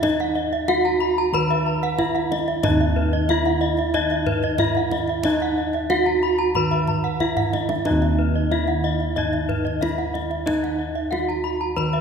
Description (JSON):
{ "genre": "Balinese gamelan", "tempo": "92 BPM", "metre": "4/4", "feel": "straight", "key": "Eb pelog", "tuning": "A4 = 440 Hz", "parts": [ { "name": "gamelan-type bronze metallophone", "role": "melody", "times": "0.0-12.0 s", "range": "Eb4 to Cb5-20c", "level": "-24 LUFS", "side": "right 2 dB", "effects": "none" }, { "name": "gamelan-type bronze metallophone", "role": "arpeggios", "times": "0.0-11.9 s", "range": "Cb5-20c to Cb6-20c", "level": "-26 LUFS", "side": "left 7 dB", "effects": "none" }, { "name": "gamelan-type bronze metallophone", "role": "arpeggios", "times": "0.0-12.0 s", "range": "Eb5 to Bb5-30c", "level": "-28 LUFS", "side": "right 4 dB", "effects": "none" }, { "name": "gamelan-type bossed gongs", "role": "bass", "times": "0.0-12.0 s", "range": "Eb2 to Fb4+20c", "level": "-24 LUFS", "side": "equal", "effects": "none" }, { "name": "kendang", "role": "percussion", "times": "0.0-12.0 s", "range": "none", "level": "-31 LUFS", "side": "right 2 dB", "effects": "none" } ], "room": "wet concert hall reverb, RT60 2.1 s", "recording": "recorded in a church or concert hall", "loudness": "-19 LUFS", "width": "side -6 dB against mid", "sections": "0.0-12.0 A section", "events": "drum fill 7.4-7.9", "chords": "none" }